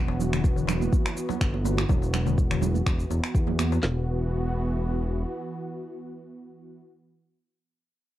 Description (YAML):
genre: afro house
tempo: 124 BPM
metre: 4/4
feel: swing 53% on 16ths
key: unclear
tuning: A4 = 440 Hz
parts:
  - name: warm analog pad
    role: sustained chords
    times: 0.0-6.8 s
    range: E3 to F#4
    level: -33 LUFS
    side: equal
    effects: chorus, sidechain pumping, cassette tape
  - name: smooth gliding synth bass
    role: bass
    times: 0.0-5.2 s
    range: E1 to E2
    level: -26 LUFS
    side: equal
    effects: sidechain pumping
  - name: darbuka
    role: percussion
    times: 0.1-3.8 s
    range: none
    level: -34 LUFS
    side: left 10 dB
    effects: none
  - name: electronic shaker and finger snaps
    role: drums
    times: 0.2-3.8 s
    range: none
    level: -33 LUFS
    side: equal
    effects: overdrive, studio reverb
  - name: congas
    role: percussion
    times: 0.2-3.7 s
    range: none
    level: -32 LUFS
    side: right 12 dB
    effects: none
  - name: afro-pop drum kit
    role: drums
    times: 0.4-3.9 s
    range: handclaps, kick drum, snare drum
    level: -24 LUFS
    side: equal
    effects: overdrive, studio reverb
room: little or no reverb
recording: home recording on cassette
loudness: -23 LUFS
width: side -14 dB against mid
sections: 0.0-3.8 A section; 3.8-7.7 B section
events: none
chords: 0.0 E5